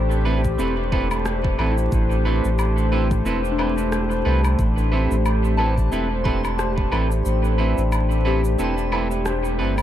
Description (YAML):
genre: ambient dub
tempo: 90 BPM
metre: 4/4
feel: swing 57% on 16ths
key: A minor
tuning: A4 = 440 Hz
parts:
  - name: warbly tape-like pad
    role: sustained chords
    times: 0.0-9.8 s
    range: A3 to C5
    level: -25 LUFS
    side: left 1 dB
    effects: chorus, built-in reverb
  - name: soft synth bell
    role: arpeggios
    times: 0.0-9.8 s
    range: D4 to G6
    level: -31 LUFS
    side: left 6 dB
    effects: chorus, phaser, dub echo
  - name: warm sub bass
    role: bass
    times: 0.0-9.8 s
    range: E1 to C2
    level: -21 LUFS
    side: equal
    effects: none
  - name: electronic cabasa, woodblock and rim click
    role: drums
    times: 0.1-9.8 s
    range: none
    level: -32 LUFS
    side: left 1 dB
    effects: dub echo
  - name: semi-hollow electric guitar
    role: stabs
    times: 0.3-9.7 s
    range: C4 to B4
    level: -27 LUFS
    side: right 4 dB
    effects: analog chorus, dub echo
  - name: electronic kick drum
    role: drums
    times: 0.4-6.9 s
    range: none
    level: -25 LUFS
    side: equal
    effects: none
room: light reverb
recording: vinyl crackle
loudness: -18 LUFS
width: side -11 dB against mid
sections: 0.0-9.8 A section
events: kick drops out 7.3-9.8; band accent 9.3-9.6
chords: 0.0 Amadd9